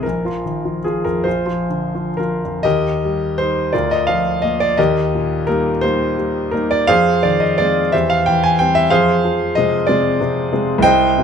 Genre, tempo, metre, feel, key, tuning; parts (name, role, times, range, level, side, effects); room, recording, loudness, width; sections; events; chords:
classical, romantic character piece for solo piano; 39-63 BPM (dotted quarters); 6/8; rubato; Eb major; A4 = 439 Hz
clear grand piano; solo; 0.0-11.2 s; Bb1 to Ab5; -14 LUFS; equal
moderate recital hall reverb, RT60 1.5 s; close, detailed microphones; -14 LUFS; side -7 dB against mid
0.0-2.6 A section; 2.6-11.2 B section
0.0 Bbsus4; 1.3 Bb; 2.6 Eb; 3.7 Bb/D; 4.8 Eb; 6.9 Fm7; 7.9 C/E; 8.9 Fm